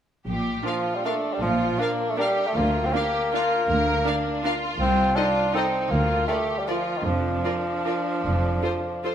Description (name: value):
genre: classical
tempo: 145-173 BPM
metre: 3/4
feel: rubato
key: Bb major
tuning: A4 = 440 Hz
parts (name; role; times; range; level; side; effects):
- rich studio violin section; second line; 0.3-9.1 s; D4 to Bb4; -29 LUFS; equal; none
- rich studio cello section; bass; 0.3-8.6 s; C2 to Bb2; -29 LUFS; right 1 dB; none
- rich studio double bass section; bass; 0.3-8.5 s; F1 to D2; -30 LUFS; right 1 dB; none
- rich studio viola section; accompaniment; 0.6-9.1 s; D4 to Bb4; -32 LUFS; right 2 dB; none
- rich studio violin section; melody; 0.7-9.1 s; C5 to F5; -34 LUFS; left 4 dB; none
- clear bassoon; accompaniment; 0.7-9.1 s; Eb3 to D4; -24 LUFS; equal; none
room: wet recital hall reverb, RT60 1.6 s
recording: none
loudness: -21 LUFS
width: side -9 dB against mid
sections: 0.3-9.1 A section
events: none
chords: 0.3 Bb; 2.6 Bb/D; 4.8 Adim/C; 5.9 Bb/D; 7.1 Bb/F; 8.2 F